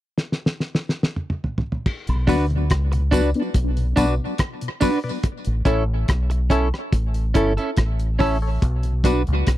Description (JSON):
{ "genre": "dub reggae", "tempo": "71 BPM", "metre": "4/4", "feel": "straight", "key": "B minor", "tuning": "A4 = 440 Hz", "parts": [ { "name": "cloth-damped thuddy drum kit", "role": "drums", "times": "0.2-9.6 s", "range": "crash cymbal, hi-hat, kick drum, rim click, snare drum, toms", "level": "-21 LUFS", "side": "equal", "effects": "none" }, { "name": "mellow tonewheel organ", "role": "accompaniment", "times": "2.1-9.3 s", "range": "B2 to D4", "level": "-27 LUFS", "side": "left 3 dB", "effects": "slow rotary speaker, tape echo" }, { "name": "deep dub fingered electric bass", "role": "bass", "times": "2.1-9.6 s", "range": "G1 to D2", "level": "-21 LUFS", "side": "equal", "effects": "none" }, { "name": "woodblock and tambourine", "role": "percussion", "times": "2.1-9.3 s", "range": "none", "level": "-39 LUFS", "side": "left 1 dB", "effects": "tape echo" }, { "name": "clean electric guitar", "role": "accompaniment", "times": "2.3-9.2 s", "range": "C#4 to B4", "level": "-26 LUFS", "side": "right 3 dB", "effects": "tape echo" }, { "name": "percussive organ stab", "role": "stabs", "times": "2.3-9.2 s", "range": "C#4 to D5", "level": "-26 LUFS", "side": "left 2 dB", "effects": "chorus, phaser, tape echo" } ], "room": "little or no reverb", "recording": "dry, close 1970s-style studio recording", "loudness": "-19 LUFS", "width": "side -14 dB against mid", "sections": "0.0-1.9 A section; 1.9-8.6 B section", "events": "drum fill 0.2-1.9; part muted 5.2-8.6", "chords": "0.0 N.C.; 1.9 Bm; 5.2 A; 8.6 Bm" }